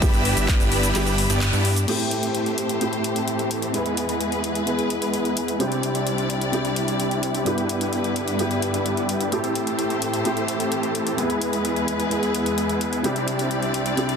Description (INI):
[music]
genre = EDM, festival progressive house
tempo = 129 BPM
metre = 4/4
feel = straight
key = A minor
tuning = A4 = 440 Hz
[part]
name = felt-muted upright piano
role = accompaniment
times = 0.0-14.2 s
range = G2 to G#4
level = -26 LUFS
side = equal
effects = sidechain pumping, dub echo
[part]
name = clear symphonic string section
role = sustained chords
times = 0.0-14.2 s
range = C2 to E6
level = -29 LUFS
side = left 1 dB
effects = sidechain pumping
[part]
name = supersaw chords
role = riff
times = 0.0-14.2 s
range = G3 to E5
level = -25 LUFS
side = equal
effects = sidechain pumping, low-pass filter, dub echo
[part]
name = fat analog bass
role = bass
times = 0.0-1.9 s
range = G1 to G2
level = -23 LUFS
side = equal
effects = sidechain pumping
[part]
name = big-room dance drum kit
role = drums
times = 0.0-14.2 s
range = crash cymbal, handclaps, hi-hat, ride cymbal, shaker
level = -29 LUFS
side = left 2 dB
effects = none
[part]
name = electronic kick drum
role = drums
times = 0.0-0.6 s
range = none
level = -19 LUFS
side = equal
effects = none
[sound]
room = moderate digital room reverb, RT60 0.9 s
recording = dense, heavily limited modern master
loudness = -20 LUFS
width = side -6 dB against mid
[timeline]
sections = 0.0-1.9 A section; 1.9-14.2 B section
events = drop 0.0-1.9; kick drops out 0.9-1.9; band accent 1.4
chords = 0.0 G6; 1.9 Am7; 3.7 E; 5.6 Cadd9; 7.5 G6; 9.3 Am7; 11.2 E; 13.0 Cadd9